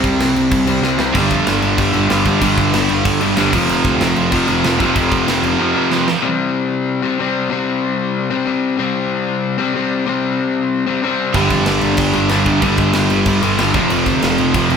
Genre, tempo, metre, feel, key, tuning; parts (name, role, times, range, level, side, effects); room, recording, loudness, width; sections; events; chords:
punk rock; 188 BPM; 4/4; straight; A4 = 440 Hz
overdriven electric guitar; riff; 0.0-14.8 s; F2 to C4; -17 LUFS; left 5 dB
sludgy distorted guitar; riff; 0.0-6.1, 11.3-14.8 s; F2 to C4; -19 LUFS; right 8 dB; overdrive
fuzz picked electric bass; bass; 0.0-5.6, 11.3-14.8 s; F1 to F2; -22 LUFS; equal; overdrive
tight metal drum kit; drums; 0.0-6.2, 11.3-14.8 s; crash cymbal, kick drum, snare drum, splash cymbal; -21 LUFS; equal
heavy high-gain guitar; riff; 1.1-6.2, 11.3-14.8 s; F2 to G3; -19 LUFS; right 3 dB; distortion
moderate large studio reverb, RT60 1.4 s; band playing live in one room; -13 LUFS; side -6 dB against mid
0.0-6.2 A section; 6.2-14.8 A section
drum fill 0.8-1.1, 5.9-6.2
0.0 C5; 1.1 G5; 3.5 F5; 6.2 C5; 11.3 G5; 13.7 F5